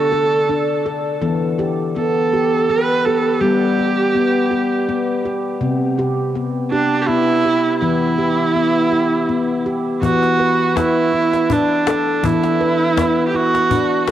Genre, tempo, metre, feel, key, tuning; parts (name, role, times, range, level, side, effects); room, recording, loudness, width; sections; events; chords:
world meditative, meditative tuned percussion; 82 BPM; 3/4; swing 54% on 16ths; A4 = 440 Hz
clear viola; melody; 0.0-14.1 s; D4 to B4; -17 LUFS; right 4 dB; cassette tape, tape echo
handpan; arpeggios; 0.0-14.1 s; C3 to B4; -18 LUFS; left 2 dB; cassette tape, tape echo
cajon; percussion; 10.0-14.1 s; -24 LUFS; left 5 dB
wet spring reverb, RT60 2.5 s; home recording on cassette; -15 LUFS; side -11 dB against mid
0.0-10.0 A section; 10.0-14.1 B section
0.0 D5; 1.2 Em; 3.4 G; 5.6 C; 7.8 Em; 10.0 Bm/E